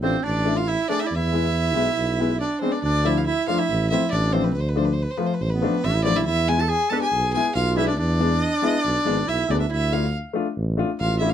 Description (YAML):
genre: klezmer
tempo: 140 BPM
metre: 4/4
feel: straight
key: unclear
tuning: A4 = 440 Hz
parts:
  - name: dark violin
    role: melody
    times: 0.0-11.3 s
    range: B4 to A5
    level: -25 LUFS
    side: equal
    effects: none
  - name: breathy clarinet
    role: second line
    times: 0.0-11.3 s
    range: B3 to B4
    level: -27 LUFS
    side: right 5 dB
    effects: none
  - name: warm upright piano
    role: accompaniment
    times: 0.0-11.3 s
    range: F3 to G#4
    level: -25 LUFS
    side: left 5 dB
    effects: none
  - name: mellow tuba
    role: bass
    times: 0.0-11.3 s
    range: G#1 to E2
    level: -24 LUFS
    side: equal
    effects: none
room: light reverb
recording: close, detailed microphones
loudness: -20 LUFS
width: side -10 dB against mid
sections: 0.0-2.8 A section; 2.8-11.3 B section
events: none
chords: 0.0 Dm; 1.1 E; 2.8 Dm; 6.3 E; 9.7 Dm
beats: 0.25 0.68 | 1.11 1.54 1.97 2.40 | 2.83 3.26 3.69 4.12 | 4.55 4.98 5.41 5.84 | 6.26 6.69 7.12 7.55 | 7.98 8.41 8.84 9.27 | 9.70 10.13 10.56 10.99